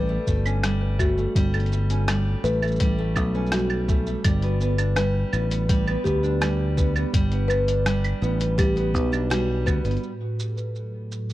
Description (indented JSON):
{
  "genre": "folktronica",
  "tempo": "83 BPM",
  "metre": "4/4",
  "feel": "straight",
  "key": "unclear",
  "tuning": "A4 = 440 Hz",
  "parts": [
    { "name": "marimba with soft mallets", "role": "second line", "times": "0.0-9.9 s", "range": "F#4 to B4", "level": "-30 LUFS", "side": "left 1 dB", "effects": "vintage 12-bit sampler grit, tape echo" },
    { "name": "nylon-string guitar", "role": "arpeggios", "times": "0.0-10.1 s", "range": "G3 to D4", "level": "-28 LUFS", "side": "right 1 dB", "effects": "tape echo" },
    { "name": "fingered electric bass", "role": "bass", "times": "0.0-10.0 s", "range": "G1 to D2", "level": "-24 LUFS", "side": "equal", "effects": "tube saturation" },
    { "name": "electronic kick drum", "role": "drums", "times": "0.3-9.8 s", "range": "none", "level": "-23 LUFS", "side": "equal", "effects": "none" },
    { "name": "lo-fi sampler-style drum kit", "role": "drums", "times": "0.3-11.3 s", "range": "claves, hi-hat, rim click, shaker", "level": "-30 LUFS", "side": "right 1 dB", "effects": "none" },
    { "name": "warm analog pad", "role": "sustained chords", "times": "10.0-11.3 s", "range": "A2 to A4", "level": "-29 LUFS", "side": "right 1 dB", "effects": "chorus, vintage 12-bit sampler grit" }
  ],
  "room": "digital ambience",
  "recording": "dry, close 1970s-style studio recording",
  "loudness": "-20 LUFS",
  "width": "side -16 dB against mid",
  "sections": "0.0-10.0 A section; 10.0-11.3 B section",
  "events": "band accent 9.3-9.7; filter sweep on analog synth pad 10.0-11.3",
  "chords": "0.0 F#m/G (rootless); 4.2 Gadd9; 10.0 F#m"
}